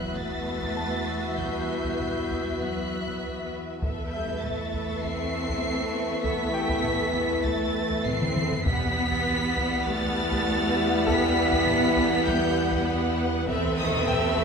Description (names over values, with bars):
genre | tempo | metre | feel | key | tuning
cinematic, suspense film score | 99 BPM | 4/4 | straight | E minor | A4 = 440 Hz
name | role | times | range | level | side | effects
warm symphonic violin section | melody | 0.0-14.4 s | D#6 to C7 | -31 LUFS | equal | none
warm symphonic violin section | second line | 0.0-14.4 s | B4 to F#5 | -32 LUFS | left 2 dB | none
warm symphonic viola section | accompaniment | 0.0-14.4 s | A3 to A4 | -33 LUFS | right 2 dB | none
mellow French horn section | sustained chords | 0.0-14.4 s | B3 to B4 | -32 LUFS | left 2 dB | none
warm trombone section | sustained chords | 0.0-14.4 s | C3 to F#4 | -34 LUFS | right 2 dB | none
warm symphonic cello section | bass | 0.0-14.4 s | D#3 to C4 | -32 LUFS | right 1 dB | none
warm symphonic double bass section | bass | 0.0-14.4 s | E2 | -33 LUFS | right 2 dB | none
impact | sound effects | 0.0-1.4 s | none | -51 LUFS | equal | none
bright concert grand piano | texture | 0.0-14.4 s | G4 to A5 | -38 LUFS | left 2 dB | none
warm symphonic violin section | texture | 0.0-13.1 s | A5 to C7 | -40 LUFS | left 2 dB | none
taiko ensemble | drums | 0.2-14.4 s | none | -34 LUFS | equal | none
timpani | percussion | 8.7-9.5, 13.5-14.4 s | E2 | -36 LUFS | equal | none
room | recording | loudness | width
wet recital hall reverb, RT60 1.4 s | recorded in a church or concert hall | -23 LUFS | side -5 dB against mid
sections
0.0-14.4 A section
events
impact 0.0-1.4; drum fill 8.1-8.7; timpani fill 13.5-14.4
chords
0.0 Emadd9; 3.8 Amadd9/E; 8.7 Emadd9; 13.5 Amadd9/E